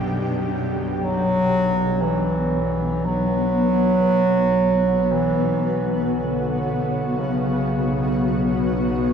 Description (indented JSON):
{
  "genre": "dark ambient drone",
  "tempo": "free time",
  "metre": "none",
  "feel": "none",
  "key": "B minor",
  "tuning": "A4 = 438 Hz",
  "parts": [
    { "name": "granular cloud pad", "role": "sustained chords", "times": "0.0-9.1 s", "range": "B2 to C#5", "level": "-24 LUFS", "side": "left 2 dB", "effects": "built-in reverb" },
    { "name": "bowed-like drone", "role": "drone", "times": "0.0-9.1 s", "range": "B1 to F#2", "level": "-26 LUFS", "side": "equal", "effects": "built-in reverb" },
    { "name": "quartz singing bowl", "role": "texture", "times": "0.0-9.1 s", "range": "none", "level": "barely audible", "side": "none", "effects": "none" },
    { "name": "mellow bass clarinet", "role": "melody", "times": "1.0-8.7 s", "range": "C#3 to F#3", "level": "-20 LUFS", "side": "right 1 dB", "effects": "tape echo" }
  ],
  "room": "wet cathedral reverb, RT60 6.4 s",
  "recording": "in a vast, echoing space",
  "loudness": "-18 LUFS",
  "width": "side -7 dB against mid",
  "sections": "1.0-9.1 A section",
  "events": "none",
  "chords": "0.0 G/B; 1.0 Bm7"
}